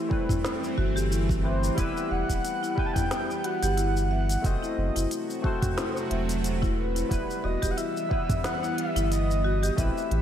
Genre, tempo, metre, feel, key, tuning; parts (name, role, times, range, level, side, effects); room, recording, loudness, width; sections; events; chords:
organic downtempo; 90 BPM; 4/4; swing 55% on 16ths; E harmonic minor; A4 = 441 Hz
barky tine electric piano; accompaniment; 0.0-10.2 s; G3 to C5; -34 LUFS; left 2 dB; analog chorus, sidechain pumping, ping-pong delay
bowed-like drone; sustained chords; 0.0-10.2 s; C3 to F#4; -34 LUFS; right 1 dB; built-in reverb, sidechain pumping
marimba with medium mallets; arpeggios; 0.0-10.2 s; E4 to E5; -33 LUFS; left 2 dB; ping-pong delay
electronic kick drum; drums; 0.1-9.9 s; -28 LUFS; equal
organic electronic drum kit; drums; 0.3-10.2 s; hi-hat, shaker, snare drum, toms; -34 LUFS; equal; overdrive, gated reverb
warm sub bass; bass; 0.8-10.2 s; E1 to A1; -27 LUFS; equal
breathy flute-like synth lead; melody; 1.4-10.2 s; B4 to A5; -32 LUFS; equal; lush chorus, ping-pong delay
light reverb; bright 1980s-style digital production; -24 LUFS; side -10 dB against mid
0.0-10.2 A section
0.0 Am7; 1.8 Em; 4.4 F#dim; 7.1 Em